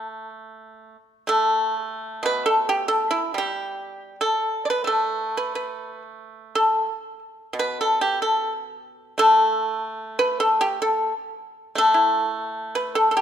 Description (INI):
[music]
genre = chinese traditional, Chinese solo plucked strings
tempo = 93 BPM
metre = 4/4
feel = rubato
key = unclear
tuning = A4 = 443 Hz
[part]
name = pipa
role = solo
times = 0.0-13.2 s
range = B2 to D5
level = -20 LUFS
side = equal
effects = none
[sound]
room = moderate scoring stage reverb, RT60 1.8 s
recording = minimal, uncompressed stereo recording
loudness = -20 LUFS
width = side -9 dB against mid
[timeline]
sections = 0.0-13.2 A section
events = none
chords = none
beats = 0.32 | 0.96 1.60 2.25 2.89 | 3.53 4.19 4.85 5.52 | 6.21 6.88 7.56 8.22 | 8.87 9.52 10.17 10.81 | 11.46 12.10 12.73